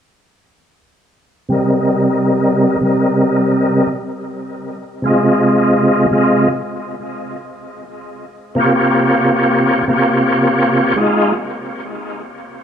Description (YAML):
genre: trip hop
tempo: 68 BPM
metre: 4/4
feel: swing 58% on 16ths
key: C phrygian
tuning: A4 = 440 Hz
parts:
  - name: overdriven tonewheel organ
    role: accompaniment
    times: 1.5-11.3 s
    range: C3 to Eb5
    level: -13 LUFS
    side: equal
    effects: chorus vibrato, fast rotary speaker, harmonic tremolo, vintage 12-bit sampler grit, low-pass filter, tape echo
room: moderate spring reverb, RT60 2.3 s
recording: small room ambience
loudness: -12 LUFS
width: side -8 dB against mid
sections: 0.4-12.6 A section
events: filter sweep on tonewheel organ 0.4-12.6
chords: 0.4 Cm7; 3.9 Cmadd11; 7.4 Bbm69/C; 11.0 Fm7